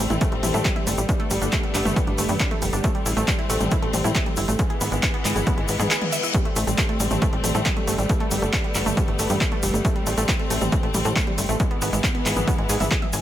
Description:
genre	uplifting trance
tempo	137 BPM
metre	4/4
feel	straight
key	A minor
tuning	A4 = 440 Hz
part	clear studio string section	sustained chords	0.0-13.2 s	E3 to C4	-28 LUFS	left 2 dB	sidechain pumping
part	wide unison pluck	arpeggios	0.0-13.2 s	G3 to G#5	-28 LUFS	right 2 dB	sidechain pumping, ping-pong delay
part	tight sequencer bass	bass	0.0-13.2 s	F1 to A2	-25 LUFS	equal	sidechain pumping
part	punchy analog drum machine	drums	0.1-13.2 s	handclaps, hi-hat, toms	-27 LUFS	equal	sidechain pumping on hats, sidechain pumping on toms
part	tube shaker	percussion	0.1-13.2 s	none	-31 LUFS	left 3 dB	none
part	electronic kick drum	drums	0.2-13.0 s	none	-24 LUFS	equal	overdrive
part	reverse cymbal	sound effects	5.7-6.3 s	none	-30 LUFS	left 6 dB	none
room	light reverb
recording	none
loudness	-20 LUFS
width	side -12 dB against mid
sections	0.0-13.2 A section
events	reverse cymbal 5.7-6.3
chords	0.0 Am7; 1.1 Gadd9; 2.8 Am7; 4.6 E/G#; 6.3 Am7; 8.1 Gadd9; 9.8 Am7; 11.6 E/G#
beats	0.21 0.65 | 1.09 1.53 1.96 2.40 | 2.84 3.28 3.72 4.15 | 4.59 5.03 5.47 5.91 | 6.34 6.78 7.22 7.66 | 8.10 8.53 8.97 9.41 | 9.85 10.29 10.72 11.16 | 11.60 12.04 12.47 12.91

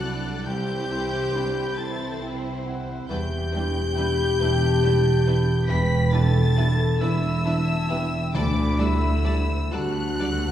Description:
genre	cinematic, emotional film score for orchestra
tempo	45 BPM (dotted quarters)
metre	6/8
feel	rubato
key	unclear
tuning	A4 = 440 Hz
part	rich studio violin section	melody	0.0-10.5 s	D6 to B6	-32 LUFS	left 2 dB	none
part	clear oboe	second line	0.0-10.5 s	D5 to B5	-35 LUFS	right 1 dB	none
part	mellow baroque flute	second line	0.0-10.5 s	E5 to C6	-36 LUFS	left 1 dB	none
part	rich studio violin section	second line	0.0-10.3 s	E4 to D5	-38 LUFS	left 1 dB	none
part	warm grand piano	accompaniment	0.0-10.5 s	C2 to A4	-31 LUFS	equal	none
part	warm studio viola section	accompaniment	0.0-10.3 s	E3 to E4	-36 LUFS	right 2 dB	none
part	warm French horn section	sustained chords	0.0-10.5 s	D4 to B4	-28 LUFS	left 3 dB	none
part	warm studio cello section	bass	0.0-10.5 s	C2 to E2	-27 LUFS	equal	none
part	warm studio double bass section	bass	0.0-10.5 s	E1 to D2	-26 LUFS	right 2 dB	none
part	timpani	percussion	8.3-9.7 s	D3	-34 LUFS	equal	none
room	wet scoring stage reverb, RT60 1.4 s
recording	heard from further back in the room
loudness	-21 LUFS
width	side -11 dB against mid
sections	0.0-10.5 A section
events	none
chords	0.0 C; 3.1 Em7; 8.3 Dsus4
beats	| 0.46 1.77 | 3.09 4.41 | 5.69 7.02 | 8.35 9.73

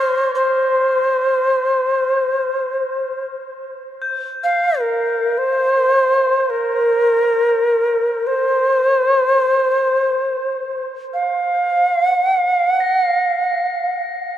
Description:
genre	world meditative, free-time meditation music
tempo	free time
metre	none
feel	none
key	unclear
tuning	A4 = 439 Hz
part	Native American-style cedar flute	melody	0.0-14.0 s	Bb4 to F5	-15 LUFS	equal	diffuse ambient delay
part	crotales	texture	0.0-14.4 s	F6 to C7	-30 LUFS	left 4 dB	none
room	wet huge ambient reverb, RT60 6.8 s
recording	dark, warm production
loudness	-15 LUFS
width	side -11 dB against mid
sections	0.0-3.5 A section; 3.5-14.4 A section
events	none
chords	none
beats	free time

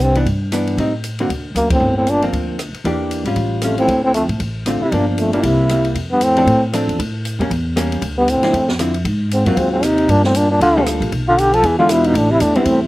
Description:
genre	jazz, small-group swing and bop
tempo	232 BPM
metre	4/4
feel	swing 59% on 8ths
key	D minor, F major from 6.0 s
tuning	A4 = 440 Hz
part	clear trombone	melody	0.0-12.9 s	E3 to A4	-15 LUFS	left 1 dB	none
part	breathy baritone saxophone	second line	0.0-12.9 s	C2 to F3	-21 LUFS	right 2 dB	slapback echo
part	upright bass	bass	0.0-12.9 s	G1 to A2	-20 LUFS	equal	none
part	vintage hollow-body jazz guitar	accompaniment	0.2-12.9 s	D3 to A4	-20 LUFS	equal	none
part	open jazz drum kit	drums	0.2-12.7 s	hi-hat, kick drum, ride cymbal, rim click, snare drum	-26 LUFS	equal	none
room	little or no reverb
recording	recorded outdoors, with no room sound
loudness	-14 LUFS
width	side -18 dB against mid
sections	0.0-6.0 A section; 6.0-12.9 B section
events	band accent 1.7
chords	0.0 Cmaj9; 0.8 Am7b5; 1.3 Daug; 1.8 Gm7; 2.8 Em7b5; 3.4 A7b13; 3.9 Dm7; 4.9 Gm7; 5.4 C7; 6.0 F6; 7.0 A7b9; 8.0 Dm9; 9.1 Ab6; 10.1 Gm9; 11.1 Bdim; 11.6 E7b9; 12.2 Am7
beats	0.00 0.26 0.52 | 0.78 1.03 1.29 1.55 | 1.81 2.07 2.33 2.59 | 2.85 3.11 3.37 3.62 | 3.88 4.14 4.40 4.66 | 4.92 5.18 5.44 5.70 | 5.96 6.21 6.47 6.73 | 6.99 7.25 7.51 7.77 | 8.03 8.28 8.54 8.80 | 9.06 9.32 9.57 9.83 | 10.09 10.35 10.61 10.86 | 11.12 11.38 11.64 11.89 | 12.15 12.41 12.67

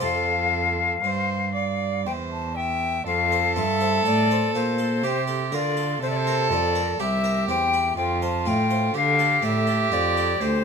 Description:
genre	classical, baroque-style sonata movement with continuo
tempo	61 BPM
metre	3/4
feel	straight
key	F major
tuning	A4 = 440 Hz
part	bright silver concert flute	melody	0.0-10.6 s	C5 to A5	-24 LUFS	left 7 dB	none
part	warm violin	second line	0.0-10.6 s	F4 to E5	-26 LUFS	right 4 dB	none
part	harpsichord	accompaniment	0.0-10.6 s	C2 to C5	-30 LUFS	left 2 dB	none
part	dark cello	bass	0.0-10.6 s	C2 to D3	-26 LUFS	right 2 dB	none
room	light reverb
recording	minimal, uncompressed stereo recording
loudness	-20 LUFS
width	side -6 dB against mid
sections	0.0-3.1 A section; 3.1-10.6 B section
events	none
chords	0.0 F; 6.0 C7; 8.0 F; 8.9 Dm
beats	| 0.03 1.05 2.06 | 3.07 4.06 5.04 | 6.02 7.00 7.97 | 8.95 9.93

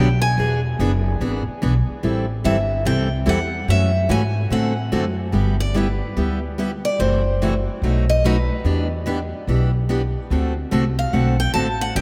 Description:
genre	acoustic string swing (jazz manouche)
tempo	145 BPM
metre	4/4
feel	swing 62% on 8ths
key	G major from 5.3 s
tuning	A4 = 440 Hz
part	picked steel-string acoustic guitar	melody	0.0-12.0 s	B4 to A5	-28 LUFS	equal	none
part	picked steel-string acoustic guitar	accompaniment	0.0-12.0 s	B2 to A4	-25 LUFS	equal	none
part	upright bass	bass	0.0-12.0 s	E1 to A2	-23 LUFS	equal	none
room	moderate cathedral reverb, RT60 5.6 s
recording	in a vast, echoing space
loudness	-20 LUFS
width	mono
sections	0.0-5.3 A section; 5.3-12.0 B section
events	steel-string acoustic guitar solo 5.3-12.0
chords	0.4 E7; 2.0 Am7; 3.7 F#m7; 4.5 D7; 5.3 G6; 7.0 F#m7b5; 7.8 B7; 8.7 Em7; 10.3 D7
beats	| 0.38 0.79 1.20 1.62 | 2.03 2.45 2.86 3.27 | 3.69 4.10 4.51 4.93 | 5.34 5.75 6.17 6.58 | 7.00 7.41 7.82 8.24 | 8.65 9.06 9.48 9.89 | 10.31 10.72 11.13 11.55 | 11.96

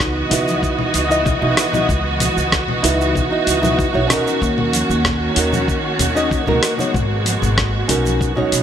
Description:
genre	sunset chillout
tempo	95 BPM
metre	4/4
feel	straight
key	C# dorian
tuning	A4 = 440 Hz
part	nylon-string guitar	accompaniment	0.0-8.6 s	B3 to D#5	-20 LUFS	moving between left 2 dB and right 5 dB	auto-pan, ping-pong delay
part	dark studio string section	sustained chords	0.0-8.6 s	B2 to D#5	-20 LUFS	right 2 dB	none
part	upright bass	bass	0.0-8.6 s	G#1 to D#2	-22 LUFS	equal	none
part	dusty soul sampler-style drum kit	drums	0.0-8.6 s	cabasa, congas, hi-hat, rim click	-21 LUFS	left 1 dB	none
part	electronic kick drum	drums	0.0-8.3 s	none	-24 LUFS	equal	none
part	congas	percussion	0.5-8.2 s	none	-29 LUFS	right 3 dB	none
room	light reverb, small room ambience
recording	none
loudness	-15 LUFS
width	side -9 dB against mid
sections	0.0-8.6 A section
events	none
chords	0.0 C#m11; 4.4 D#m7; 6.6 G#m9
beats	0.00 0.63 1.26 | 1.89 2.52 3.15 3.79 | 4.42 5.05 5.68 6.31 | 6.94 7.57 8.21

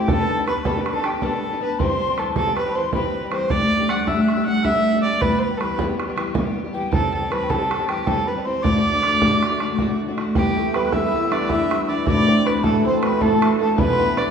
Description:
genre	celtic folk, Celtic slip jig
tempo	105 BPM (dotted quarters)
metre	9/8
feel	straight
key	unclear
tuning	A4 = 439 Hz
part	warm fiddle	melody	0.0-14.3 s	G4 to F#5	-23 LUFS	right 2 dB	none
part	mellow hollow tin whistle	second line	0.0-14.3 s	G5 to F#6	-28 LUFS	left 6 dB	none
part	picked steel-string acoustic guitar	accompaniment	0.0-14.3 s	D2 to B4	-22 LUFS	left 2 dB	none
part	bodhran	percussion	0.1-14.3 s	none	-25 LUFS	right 2 dB	none
part	hammered dulcimer	second line	10.4-14.3 s	G3 to E4	-23 LUFS	right 4 dB	none
room	wet recital hall reverb, RT60 1.5 s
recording	recorded in a church or concert hall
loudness	-18 LUFS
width	side -6 dB against mid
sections	0.0-10.4 A section; 10.4-14.3 B section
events	none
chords	0.1 G/B; 1.8 C; 3.5 Gsus2; 5.2 Em; 6.9 C; 8.6 D; 10.4 Em; 12.1 Dadd9; 13.8 Em7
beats	| 0.08 0.65 1.22 | 1.79 2.36 2.93 | 3.50 4.07 4.64 | 5.21 5.78 6.35 | 6.92 7.50 8.07 | 8.64 9.21 9.78 | 10.35 10.92 11.50 | 12.07 12.64 13.21 | 13.78

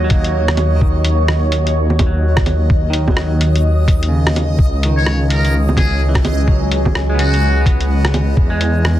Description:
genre	future garage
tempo	127 BPM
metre	4/4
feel	swing 60% on 16ths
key	Eb phrygian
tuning	A4 = 440 Hz
part	semi-hollow electric guitar	accompaniment	0.0-9.0 s	Db3 to Db4	-23 LUFS	right 2 dB	vintage 12-bit sampler grit, sidechain pumping, analog delay
part	deep dark ambient pad	sustained chords	0.0-9.0 s	Db4 to Ab5	-23 LUFS	equal	chorus, built-in reverb, sidechain pumping
part	dark detuned saw bass	bass	0.0-9.0 s	Db2 to E2	-15 LUFS	equal	sidechain pumping
part	backwards swelling texture	texture	0.0-9.0 s	Eb5	-30 LUFS	right 2 dB	built-in reverb
part	electronic kick drum	drums	0.1-8.5 s	none	-14 LUFS	equal	small room ambience
part	lo-fi sampler-style drum kit	drums	0.1-9.0 s	bongos, hi-hat, rim click	-20 LUFS	right 1 dB	small room ambience, soft clipping on snare
part	trumpet with metal mute	melody	5.0-7.7 s	Gb4 to Db5	-24 LUFS	left 1 dB	vintage 12-bit sampler grit, analog delay
room	little or no reverb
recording	dense, heavily limited modern master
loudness	-12 LUFS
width	side -13 dB against mid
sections	0.0-9.0 A section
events	none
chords	0.0 Ebm7; 4.6 Dbm9; 8.4 Emaj9#11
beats	0.34 | 0.81 1.29 1.76 2.23 | 2.70 3.17 3.65 4.12 | 4.59 5.07 5.54 6.01 | 6.48 6.96 7.43 7.90 | 8.37 8.85

